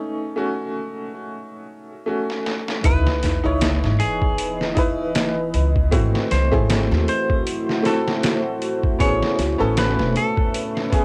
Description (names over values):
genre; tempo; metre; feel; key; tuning
trip hop; 78 BPM; 4/4; swing 57% on 16ths; C# minor; A4 = 445 Hz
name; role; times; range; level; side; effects
clear upright piano; accompaniment; 0.0-11.0 s; A3 to C#5; -28 LUFS; equal; tremolo, cassette tape, tape echo
trip hop sampler-style drum kit; drums; 2.3-11.0 s; hi-hat, kick drum, snare drum; -25 LUFS; equal; high-pass filter on hats, high-pass filter on snare, high-pass filter on kick
deep dark ambient pad; sustained chords; 3.7-11.0 s; E3 to D#5; -28 LUFS; equal; chorus, built-in reverb, cassette tape
upright bass; bass; 2.8-10.1 s; E1 to E2; -23 LUFS; equal; tube saturation
sub drop; sound effects; 2.9-5.9 s; none; -31 LUFS; equal; none
semi-hollow electric guitar; melody; 2.9-10.9 s; G#4 to C#5; -29 LUFS; equal; cassette tape, tape echo
room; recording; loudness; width
little or no reverb; home recording on cassette; -21 LUFS; mono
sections
0.0-2.8 A section; 2.8-11.0 B section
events
break 0.0-2.8; drum fill 2.3-2.8; impact 2.8-5.9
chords
0.0 A6; 2.8 C#m9; 5.9 G#7b9b13; 9.0 Amaj9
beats
0.54 1.31 2.08 | 2.84 3.61 4.38 5.15 | 5.92 6.69 7.46 8.23 | 9.00 9.77 10.54